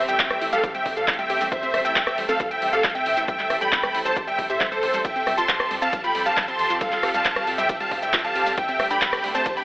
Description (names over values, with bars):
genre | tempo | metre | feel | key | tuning
uplifting trance | 136 BPM | 4/4 | straight | A minor | A4 = 439 Hz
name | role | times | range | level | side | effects
supersaw chords | melody | 0.0-9.6 s | A4 to C6 | -23 LUFS | equal | cassette tape, sidechain pumping
plucky unison lead | second line | 0.0-9.6 s | C5 to C6 | -29 LUFS | equal | sidechain pumping
supersaw pad | sustained chords | 0.0-9.6 s | D3 to A4 | -31 LUFS | equal | sidechain pumping
gritty driven synth bass | bass | 0.0-9.4 s | F1 to A2 | -38 LUFS | equal | sidechain pumping
analog pluck | arpeggios | 0.1-9.6 s | G3 to G4 | -34 LUFS | left 1 dB | chorus, sidechain pumping, dub echo
big-room dance drum kit | drums | 0.1-9.6 s | handclaps, hi-hat, ride cymbal, rim click, shaker | -26 LUFS | equal | small room ambience
electronic kick drum | drums | 0.2-9.5 s | none | -31 LUFS | equal | small room ambience
room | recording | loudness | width
light reverb | telephone sound | -20 LUFS | side -21 dB against mid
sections
0.0-9.6 A section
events
none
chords
0.0 Am7; 5.0 Fadd9; 8.6 D7sus4